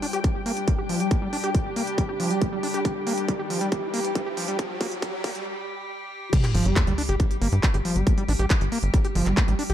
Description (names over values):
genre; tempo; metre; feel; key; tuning
psychedelic trance; 138 BPM; 4/4; straight; unclear; A4 = 440 Hz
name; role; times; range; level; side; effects
evolving wavetable pad; sustained chords; 0.0-9.7 s; G3 to G4; -32 LUFS; equal; chorus, built-in reverb, sidechain pumping
overdriven acid bass; riff; 0.0-9.7 s; F3 to G4; -29 LUFS; moving between left 3 dB and right 3 dB; distortion, auto-pan, sidechain pumping, digital delay
techno drum kit; drums; 0.0-9.7 s; crash cymbal, handclaps, hi-hat; -31 LUFS; right 1 dB; none
riser and sub drop; sound effects; 1.0-8.1 s; none; -33 LUFS; equal; none
muted studio string section; texture; 0.0-5.5 s; C4 to G5; -33 LUFS; left 2 dB; sidechain pumping
electronic kick drum; drums; 0.2-9.5 s; none; -24 LUFS; equal; distortion
tight sequencer bass; bass; 6.5-9.7 s; G1 to G2; -23 LUFS; equal; tube saturation
room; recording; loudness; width
little or no reverb; dark, warm production, high-pass filter; -22 LUFS; side -11 dB against mid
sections
0.0-6.3 A section; 6.3-9.7 B section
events
build-up 0.0-6.3; filter sweep on acid bass 0.0-6.3; filter sweep on ambient pad 0.0-6.3; filter sweep 0.0-6.3; riser 1.0-5.5; drum fill 2.9-5.5; break 5.5-6.3; drop 6.3-9.7; impact 6.3-8.1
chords
0.0 G5